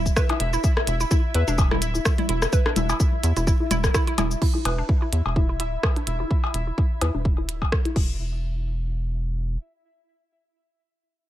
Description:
minimal techno; 127 BPM; 4/4; swing 55% on 16ths; A4 = 440 Hz
rubbery square bass; bass; 0.0-9.6 s; D1 to E2; -25 LUFS; equal; sidechain pumping
pulsing gated texture; texture; 0.0-8.2 s; E4 to E5; -33 LUFS; left 2 dB; chorus, built-in reverb, sidechain pumping
electronic kick drum; drums; 0.1-8.1 s; -21 LUFS; equal
minimal click drum kit; drums; 0.1-8.1 s; crash cymbal, hi-hat, rim click, shaker; -29 LUFS; equal; overdrive
hollow square pluck; riff; 0.2-8.4 s; D4 to B4; -31 LUFS; right 3 dB; chorus, sidechain pumping, dub echo
electronic cowbell, bongos, rim click and congas; percussion; 0.3-7.9 s; -27 LUFS; left 3 dB; digital delay
little or no reverb; -20 LUFS; side -13 dB against mid
0.0-4.4 A section; 4.4-8.2 B section; 8.2-11.3 C section
drop 0.0-4.4; filter sweep on analog synth bass 4.4-8.2; filter sweep on synth arpeggio sound 4.4-8.2
0.0 E5; 8.0 N.C.

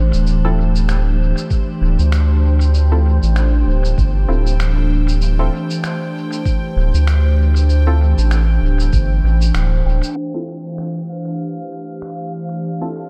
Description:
ambient dub; 97 BPM; 4/4; swing 58% on 16ths; D minor; A4 = 441 Hz
soft additive organ-like pad; sustained chords; 0.0-13.1 s; E3 to C5; -25 LUFS; equal; ensemble chorus, built-in reverb
round analog bass; bass; 0.0-10.0 s; D1 to D2; -16 LUFS; equal
electronic cabasa and finger snaps; drums; 0.1-12.8 s; -33 LUFS; equal; low-pass filter on perc, low-pass filter on snare, low-pass filter on room, dub echo
bubbling stepped-filter texture; texture; 1.2-13.1 s; F5 to G5; -37 LUFS; equal; chorus, built-in reverb
filtered dub chord stab; stabs; 0.4-13.0 s; C4 to A4; -31 LUFS; equal; chorus, dub echo
electronic kick drum; drums; 1.5-9.1 s; -20 LUFS; equal
moderate church reverb, RT60 3.0 s; dreamy mix soaked in reverb, low-pass filter; -17 LUFS; mono
0.0-10.2 A section; 10.2-13.1 B section
filter sweep on ambient pad 10.2-13.1; filter sweep 10.2-13.1
0.0 Dm7

